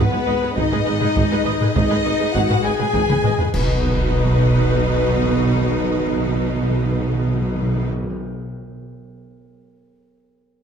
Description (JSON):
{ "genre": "cinematic, epic orchestral film score", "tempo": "67 BPM (dotted quarters)", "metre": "6/8", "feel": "straight", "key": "B major", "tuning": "A4 = 440 Hz", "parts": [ { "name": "warm symphonic violin section", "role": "melody", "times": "0.0-7.9 s", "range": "D#4 to G#5", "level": "-31 LUFS", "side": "left 6 dB", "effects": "none" }, { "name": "warm symphonic violin section", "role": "second line", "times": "0.0-7.9 s", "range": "B4 to G#5", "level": "-28 LUFS", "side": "left 3 dB", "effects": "none" }, { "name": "warm studio viola section", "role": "accompaniment", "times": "0.0-7.9 s", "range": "B3 to D#5", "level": "-29 LUFS", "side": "right 2 dB", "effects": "none" }, { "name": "clear symphonic string section", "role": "sustained chords", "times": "0.0-7.9 s", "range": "D#4 to D#5", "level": "-30 LUFS", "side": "right 2 dB", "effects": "none" }, { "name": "warm French horn section", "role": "sustained chords", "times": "0.0-7.9 s", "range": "B3 to B4", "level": "-24 LUFS", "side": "left 4 dB", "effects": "none" }, { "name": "clear symphonic cello section", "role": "bass", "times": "0.0-7.9 s", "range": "G#2 to B2", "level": "-26 LUFS", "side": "right 3 dB", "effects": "none" }, { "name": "dark tuba", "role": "bass", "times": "0.0-7.9 s", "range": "G#1 to B1", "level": "-25 LUFS", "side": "right 5 dB", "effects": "none" }, { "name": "rich studio double bass section", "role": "bass", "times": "0.0-7.9 s", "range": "G#1 to B1", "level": "-25 LUFS", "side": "right 3 dB", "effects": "none" }, { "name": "taiko ensemble", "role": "drums", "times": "0.6-3.7 s", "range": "none", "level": "-23 LUFS", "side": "left 1 dB", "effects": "none" }, { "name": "clash cymbals and concert bass drum", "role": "percussion", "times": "3.5-4.7 s", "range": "none", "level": "-27 LUFS", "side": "equal", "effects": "none" }, { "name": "timpani", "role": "percussion", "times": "3.5-8.2 s", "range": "B2", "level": "-25 LUFS", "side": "left 1 dB", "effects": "none" } ], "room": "moderate scoring stage reverb, RT60 1.8 s", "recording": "dark, warm production", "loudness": "-16 LUFS", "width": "side -7 dB against mid", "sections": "0.0-3.5 A section; 3.5-7.1 B section", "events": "drum fill 3.1-3.5; band accent 3.5-4.1", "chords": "0.0 G#m; 3.5 B" }